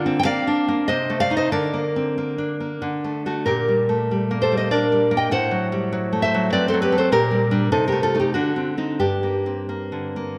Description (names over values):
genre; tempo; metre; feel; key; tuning
romantic piece for solo classical guitar; 86-101 BPM; 3/4; rubato; G minor; A4 = 441 Hz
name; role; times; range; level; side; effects
nylon-string guitar; solo; 0.0-10.4 s; G2 to G5; -21 LUFS; equal; tape echo
room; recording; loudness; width
moderate scoring stage reverb, RT60 1.6 s; none; -21 LUFS; mono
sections
0.0-10.4 A section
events
none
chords
0.0 Bb/D; 0.9 Adim/C; 1.5 Bbadd9/D; 2.8 D; 3.5 Gm/Bb; 5.3 F#dim/A; 7.1 Gm/Bb; 7.7 Adim/C; 8.3 D7b9; 9.0 Gm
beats
0.27 0.88 | 1.52 2.17 2.82 | 3.47 4.09 4.71 | 5.32 5.92 6.51 | 7.11 7.71 8.33 | 9.00 9.69 10.38